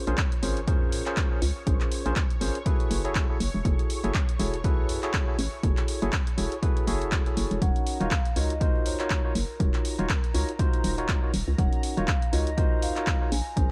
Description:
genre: deep house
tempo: 121 BPM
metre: 4/4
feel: swing 57% on 16ths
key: Eb dorian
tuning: A4 = 440 Hz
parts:
  - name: barky tine electric piano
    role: stabs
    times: 0.0-13.7 s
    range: Db4 to Db5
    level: -34 LUFS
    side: equal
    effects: overdrive, sidechain pumping, low-pass filter, tape echo
  - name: analog string pad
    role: texture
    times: 0.0-13.7 s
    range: Db5 to Bb5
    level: -46 LUFS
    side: equal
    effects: ensemble chorus, phaser, sidechain pumping
  - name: hollow knocking FM bass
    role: bass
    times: 0.1-13.7 s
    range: Eb1 to Bb2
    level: -31 LUFS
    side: equal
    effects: sidechain pumping
  - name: punchy analog drum machine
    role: drums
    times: 0.1-13.7 s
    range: handclaps, hi-hat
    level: -36 LUFS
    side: equal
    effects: none
  - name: electronic kick drum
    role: drums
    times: 0.2-13.7 s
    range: none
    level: -28 LUFS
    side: equal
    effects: none
  - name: vibraphone with soft mallets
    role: melody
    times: 7.6-13.7 s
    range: Bb4 to Ab5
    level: -38 LUFS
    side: equal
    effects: none
room: little or no reverb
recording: vinyl crackle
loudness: -26 LUFS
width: mono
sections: 0.0-13.7 A section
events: none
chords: 0.0 Bbm9; 2.7 Gbm9; 7.6 Ebm9

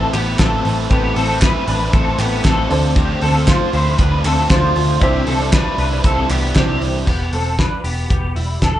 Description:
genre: jangly indie pop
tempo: 117 BPM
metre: 4/4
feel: straight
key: unclear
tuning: A4 = 440 Hz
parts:
  - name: biting overdriven guitar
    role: accompaniment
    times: 0.0-7.1 s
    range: A2 to B4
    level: -23 LUFS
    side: right 7 dB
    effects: slapback echo
  - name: warm upright piano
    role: accompaniment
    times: 0.0-7.1 s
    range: C4 to C5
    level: -27 LUFS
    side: right 2 dB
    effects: slapback echo
  - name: electric guitar through a small old amp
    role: arpeggios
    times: 0.0-8.8 s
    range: G3 to C5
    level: -20 LUFS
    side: left 2 dB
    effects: ensemble chorus, slapback echo
  - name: vintage muted picked electric bass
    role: bass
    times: 0.0-8.8 s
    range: E1 to D2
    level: -19 LUFS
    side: equal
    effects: none
  - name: cloth-damped thuddy drum kit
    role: drums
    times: 0.1-8.7 s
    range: crash cymbal, hi-hat, kick drum, snare drum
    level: -18 LUFS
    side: equal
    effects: none
  - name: group handclap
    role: percussion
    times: 0.1-6.7 s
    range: none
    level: -28 LUFS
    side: right 2 dB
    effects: none
room: light reverb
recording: live gig heard through the venue's PA, club reverb, nothing above 10.5 kHz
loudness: -14 LUFS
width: side -13 dB against mid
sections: 0.0-7.1 A section; 7.1-8.8 B section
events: none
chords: 0.0 Amadd9; 2.7 Dm7; 5.0 Cadd9; 7.1 Em7

